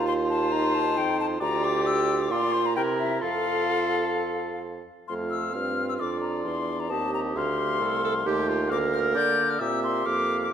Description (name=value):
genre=quick classical-period movement for wind quintet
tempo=133 BPM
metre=4/4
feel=straight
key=F major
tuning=A4 = 440 Hz
part: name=hollow concert flute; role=melody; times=0.0-10.5 s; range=E5 to G6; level=-29 LUFS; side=left 6 dB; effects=none
part: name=warm oboe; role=second line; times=0.0-10.5 s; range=A4 to G5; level=-31 LUFS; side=left 3 dB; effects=none
part: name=clear clarinet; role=accompaniment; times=0.0-10.5 s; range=E4 to Bb4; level=-31 LUFS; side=right 7 dB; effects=none
part: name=mellow French horn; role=accompaniment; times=0.0-10.5 s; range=A3 to Bb4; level=-31 LUFS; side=right 1 dB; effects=none
part: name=mellow bassoon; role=bass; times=0.0-10.5 s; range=C2 to D3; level=-30 LUFS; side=right 2 dB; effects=none
room=moderate concert hall reverb, RT60 1.9 s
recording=lossy compression artefacts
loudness=-23 LUFS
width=side -8 dB against mid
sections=0.0-5.1 A section; 5.1-10.5 A section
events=none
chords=0.0 F5/Eb; 1.4 Dmadd11; 2.3 Bb; 2.8 C7; 3.2 F; 6.9 F7; 8.7 Bb/D; 9.6 Bb5